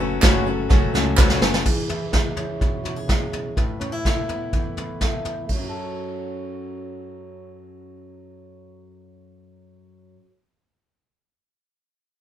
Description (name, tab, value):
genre	indie folk with a building arrangement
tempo	125 BPM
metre	4/4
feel	straight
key	F# minor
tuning	A4 = 440 Hz
part	clear upright piano	accompaniment	0.0-1.7 s	F#1 to A5	-28 LUFS	right 4 dB	none
part	picked steel-string acoustic guitar	accompaniment	0.0-1.7 s	F#2 to F#4	-23 LUFS	left 5 dB	none
part	fretless electric bass	bass	0.0-1.6 s	F#1 to C#2	-26 LUFS	equal	none
part	vintage brush drum kit	drums	0.2-5.6 s	crash cymbal, kick drum, snare drum, toms	-21 LUFS	equal	none
part	group handclap	percussion	0.2-1.3 s	none	-25 LUFS	right 4 dB	none
part	fingerpicked steel-string acoustic guitar	accompaniment	1.7-10.3 s	F#2 to B4	-30 LUFS	equal	none
room	light reverb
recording	band playing live in one room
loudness	-20 LUFS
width	side -11 dB against mid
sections	0.0-1.7 A section; 1.7-5.5 B section; 5.5-9.3 C section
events	upright piano fill 0.2-1.7; drum fill 0.7-1.7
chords	0.0 F#m; 1.7 E6; 3.6 Asus2; 5.5 F#m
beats	0.23 0.70 1.18 | 1.65 2.13 2.61 3.08 | 3.56 4.04 4.53 5.01 | 5.49 5.97 6.45 6.93 | 7.41 7.89 8.37 8.85